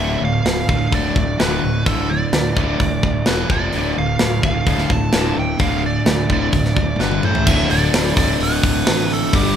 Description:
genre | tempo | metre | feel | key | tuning
hard rock | 128 BPM | 4/4 | straight | D dorian | A4 = 440 Hz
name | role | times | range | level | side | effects
nasal lead guitar with a parked wah | melody | 0.0-9.6 s | G4 to A5 | -24 LUFS | right 2 dB | overdrive
crunchy overdriven guitar | riff | 0.0-9.6 s | D2 to G3 | -26 LUFS | left 1 dB | none
overdriven electric guitar | riff | 0.0-9.6 s | D2 to A3 | -24 LUFS | right 8 dB | none
overdriven semi-hollow guitar | riff | 0.0-9.6 s | D2 to A3 | -23 LUFS | left 7 dB | none
fuzz fingered electric bass | bass | 0.0-9.5 s | D1 to D2 | -24 LUFS | equal | overdrive
tight metal drum kit | drums | 0.5-9.4 s | crash cymbal, hi-hat, kick drum, snare drum, toms | -19 LUFS | equal | none
room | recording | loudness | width
moderate large studio reverb, RT60 0.8 s | band playing live in one room | -15 LUFS | side -8 dB against mid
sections
0.0-7.5 A section; 7.5-9.6 B section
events
drum fill 7.0-7.5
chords
0.0 Dm; 3.3 E5; 3.5 F5; 3.7 Dm; 7.0 G5; 7.2 A5; 7.5 D5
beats
0.46 0.93 1.40 | 1.86 2.33 2.80 3.27 | 3.73 4.20 4.67 5.14 | 5.61 6.07 6.54 7.00 | 7.47 7.94 8.40 8.87 | 9.33

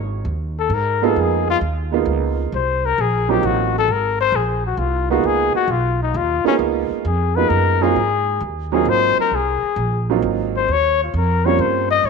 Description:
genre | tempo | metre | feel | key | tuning
jazz | 132 BPM | 3/4 | swing 68% on 8ths | Ab mixolydian | A4 = 438 Hz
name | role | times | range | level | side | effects
upright bass | bass | 0.0-12.1 s | Ab1 to Ab2 | -22 LUFS | right 1 dB | none
mellow trumpet | melody | 0.6-12.1 s | Db4 to Eb5 | -19 LUFS | left 9 dB | none
warm upright piano | accompaniment | 1.0-12.0 s | Gb3 to F4 | -20 LUFS | right 14 dB | none
room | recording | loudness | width
moderate echo chamber reverb, RT60 1.8 s, studio ambience | 1960s-style stereo with parts hard left and right | -16 LUFS | side -4 dB against mid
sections
0.0-12.1 A section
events
none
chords
0.0 Absus2; 1.2 Db13; 2.5 Ab13; 5.2 Db13; 8.0 Ab13; 10.7 Eb13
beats
0.26 0.71 | 1.16 1.61 2.07 | 2.52 2.97 3.42 | 3.88 4.33 4.78 | 5.24 5.69 6.14 | 6.60 7.05 7.51 | 7.96 8.42 8.87 | 9.32 9.78 10.23 | 10.69 11.14 11.60 | 12.05

